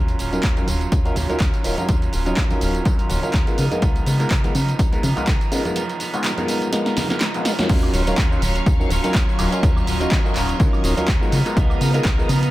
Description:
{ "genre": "filtered disco house", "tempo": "124 BPM", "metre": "4/4", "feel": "swing 56% on 16ths", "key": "Eb minor", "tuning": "A4 = 439 Hz", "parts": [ { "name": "electric guitar at the edge of break-up", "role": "riff", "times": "0.0-12.5 s", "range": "F3 to Bb4", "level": "-27 LUFS", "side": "right 4 dB", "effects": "sidechain pumping, low-pass filter" }, { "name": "plucky analog bass", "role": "bass", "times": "0.0-12.5 s", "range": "Eb1 to Db3", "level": "-23 LUFS", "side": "equal", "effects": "sidechain pumping, low-pass filter" }, { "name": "punchy analog drum machine", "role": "drums", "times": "0.1-12.5 s", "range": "crash cymbal, handclaps, hi-hat, snare drum, tambourine, woodblock", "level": "-27 LUFS", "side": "equal", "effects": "overdrive, sidechain pumping on hats, sidechain pumping on perc, sidechain pumping on cymbals" }, { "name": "tambourine and congas", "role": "percussion", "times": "0.1-7.7 s", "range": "none", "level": "-32 LUFS", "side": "right 2 dB", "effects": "sidechain pumping on perc, low-pass filter on perc" }, { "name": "overdriven clav", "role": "accompaniment", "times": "0.3-12.3 s", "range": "Gb3 to Eb5", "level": "-25 LUFS", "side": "equal", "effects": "phaser, sidechain pumping, low-pass filter" }, { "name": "electronic kick drum", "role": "drums", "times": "0.4-12.2 s", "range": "none", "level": "-20 LUFS", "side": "equal", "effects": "overdrive" }, { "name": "string machine, full ensemble", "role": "sustained chords", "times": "7.7-12.5 s", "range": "Gb3 to Eb6", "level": "-28 LUFS", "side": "left 1 dB", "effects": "phaser, ensemble chorus, vintage 12-bit sampler grit, sidechain pumping, low-pass filter" } ], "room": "little or no reverb", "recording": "none", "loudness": "-17 LUFS", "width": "side -16 dB against mid", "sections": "0.0-7.7 A section; 7.7-12.5 B section", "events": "filter sweep 0.0-7.7; drum fill 6.7-7.7; band accent 7.6; drop 7.7-12.5", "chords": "0.0 Ebm9; 3.6 Db13; 7.7 Ebm9; 11.3 Db13" }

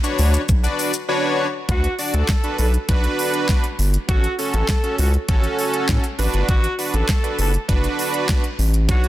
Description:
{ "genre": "dance-pop", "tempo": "100 BPM", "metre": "4/4", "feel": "straight", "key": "D major", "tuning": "A4 = 440 Hz", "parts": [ { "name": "big bright polysynth", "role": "accompaniment", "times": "0.0-9.1 s", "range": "C#4 to D5", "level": "-23 LUFS", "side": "right 1 dB", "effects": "sidechain pumping" }, { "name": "pop drum kit", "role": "drums", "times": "0.0-9.1 s", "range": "handclaps, hi-hat, kick drum, shaker, snare drum", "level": "-21 LUFS", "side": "equal", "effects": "none" }, { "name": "round analog bass", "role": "bass", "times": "0.2-9.1 s", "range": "F#1 to A2", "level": "-19 LUFS", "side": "equal", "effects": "sidechain pumping" }, { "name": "warm horn section", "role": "melody", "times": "1.7-9.1 s", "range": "F#4 to A4", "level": "-28 LUFS", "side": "right 1 dB", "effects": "digital delay" } ], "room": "digital ambience", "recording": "dense, heavily limited modern master", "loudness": "-17 LUFS", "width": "side -14 dB against mid", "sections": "0.0-1.7 A section; 1.7-9.1 B section", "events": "silent gap 1.1-1.7", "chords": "0.0 Bmadd9; 1.7 D6; 4.1 A6; 6.2 D6" }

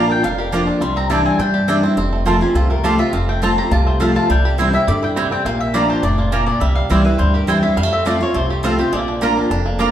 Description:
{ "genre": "bluegrass", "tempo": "207 BPM", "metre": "4/4", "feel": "straight", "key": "unclear", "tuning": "A4 = 440 Hz", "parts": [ { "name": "bluegrass banjo", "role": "melody", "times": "0.0-9.9 s", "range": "G3 to G4", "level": "-25 LUFS", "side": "right 3 dB", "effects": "none" }, { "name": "mandolin", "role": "melody", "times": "0.0-9.9 s", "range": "F4 to D6", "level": "-23 LUFS", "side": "left 3 dB", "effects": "none" }, { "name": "picked steel-string acoustic guitar", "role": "accompaniment", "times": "0.0-9.9 s", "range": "F2 to F4", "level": "-18 LUFS", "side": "equal", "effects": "none" }, { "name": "mandolin", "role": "stabs", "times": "0.0-9.9 s", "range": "Bb3 to Bb5", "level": "-23 LUFS", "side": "right 4 dB", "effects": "none" }, { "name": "upright bass", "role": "bass", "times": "0.0-9.9 s", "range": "F1 to G2", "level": "-20 LUFS", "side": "equal", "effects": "none" } ], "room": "wet large studio reverb, RT60 1.4 s", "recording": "band playing live in one room", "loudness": "-14 LUFS", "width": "side -10 dB against mid", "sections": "0.0-2.0 A section; 2.0-9.9 B section", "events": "none", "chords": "0.0 Bb; 0.8 Cadd9; 2.0 F; 4.3 C; 5.5 Bb; 6.6 C; 7.8 F; 8.9 Bb" }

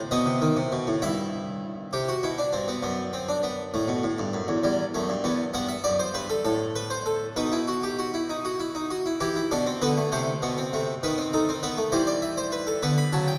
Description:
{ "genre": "classical, baroque-style 3-part fugue for harpsichord", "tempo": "66 BPM (dotted quarters)", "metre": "6/8", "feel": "straight", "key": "E minor from 5.5 s", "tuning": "A4 = 440 Hz", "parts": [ { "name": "harpsichord", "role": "solo", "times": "0.0-13.4 s", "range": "E2 to B5", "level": "-27 LUFS", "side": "equal", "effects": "none" } ], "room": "wet cathedral reverb, RT60 4.1 s", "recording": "recorded in a church or concert hall", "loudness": "-27 LUFS", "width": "mono", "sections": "0.0-1.9 A section; 1.9-9.2 B section; 9.2-13.4 A section", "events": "none", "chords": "0.1 B7; 1.0 Em/G; 1.9 Cmaj7; 2.8 F#sus4; 3.7 Em; 6.5 Amadd9; 7.4 B; 9.2 Em; 10.1 Am; 11.0 B7/D#; 11.9 Em; 12.8 Bm" }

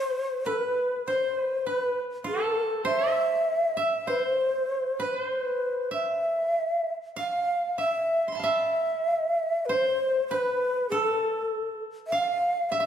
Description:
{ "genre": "japanese traditional, Japanese chamber music", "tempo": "49 BPM", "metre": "2/4", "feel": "rubato", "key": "E miyako bushi", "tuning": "A4 = 440 Hz", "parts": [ { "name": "breathy hollow shakuhachi", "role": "melody", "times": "0.0-12.9 s", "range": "A4 to F5", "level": "-26 LUFS", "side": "left 1 dB", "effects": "none" }, { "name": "koto", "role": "second line", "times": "0.0-12.9 s", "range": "A4 to C6", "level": "-31 LUFS", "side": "right 4 dB", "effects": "none" } ], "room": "wet recital hall reverb, RT60 1.7 s", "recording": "recorded in a church or concert hall, lossy compression artefacts", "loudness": "-24 LUFS", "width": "side -9 dB against mid", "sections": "0.0-8.4 A section; 8.4-12.9 B section", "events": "none", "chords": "none" }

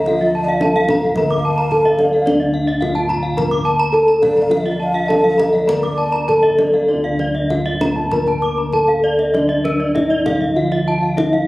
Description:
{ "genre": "Balinese gamelan", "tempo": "98-110 BPM", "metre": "4/4", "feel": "straight", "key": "D pelog", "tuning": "A4 = 442 Hz", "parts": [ { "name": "gamelan-type bronze metallophone", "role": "melody", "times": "0.0-11.5 s", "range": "D4 to Bb4", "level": "-17 LUFS", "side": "equal", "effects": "none" }, { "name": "breathy xiao", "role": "second line", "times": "0.0-6.5 s", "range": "D5 to F5", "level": "-23 LUFS", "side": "equal", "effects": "none" }, { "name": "gamelan-type bronze metallophone", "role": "accompaniment", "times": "0.0-11.5 s", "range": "D3 to Bb3", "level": "-29 LUFS", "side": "right 1 dB", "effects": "none" }, { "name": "gamelan-type bronze metallophone", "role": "arpeggios", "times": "0.0-11.3 s", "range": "D5 to Bb5", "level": "-22 LUFS", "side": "left 1 dB", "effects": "none" }, { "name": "gamelan-type bossed gongs", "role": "bass", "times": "0.0-11.5 s", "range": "D2 to F4", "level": "-24 LUFS", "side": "equal", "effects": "none" }, { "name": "kendang", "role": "percussion", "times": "0.1-11.4 s", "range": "none", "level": "-24 LUFS", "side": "equal", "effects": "none" }, { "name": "gamelan-type bronze metallophone", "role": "arpeggios", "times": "0.2-11.5 s", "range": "Bb4 to D6", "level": "-24 LUFS", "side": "right 1 dB", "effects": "none" } ], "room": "moderate recital hall reverb, RT60 1.7 s", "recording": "recorded on a phone in the room, club reverb, compression", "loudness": "-14 LUFS", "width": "side -18 dB against mid", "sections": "0.0-6.9 A section; 6.9-11.5 B section", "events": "none", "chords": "none" }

